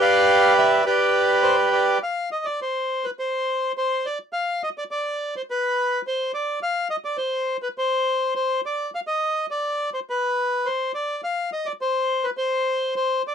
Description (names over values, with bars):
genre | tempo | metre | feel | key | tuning
tango | 104 BPM | 4/4 | rubato | C harmonic minor | A4 = 440 Hz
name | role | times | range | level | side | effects
bandoneon | solo | 0.0-13.3 s | G4 to F5 | -20 LUFS | equal | none
room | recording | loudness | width
light reverb | dry, close 1970s-style studio recording | -20 LUFS | side -7 dB against mid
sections
0.0-2.0 A section; 2.0-13.3 B section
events
none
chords
0.0 G; 2.0 N.C.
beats
0.28 0.85 1.43 | 2.02 2.60 3.18 3.76 | 4.33 4.90 5.47 6.04 | 6.60 7.17 7.74 8.32 | 8.90 9.48 10.06 10.64 | 11.22 11.80 12.38 12.96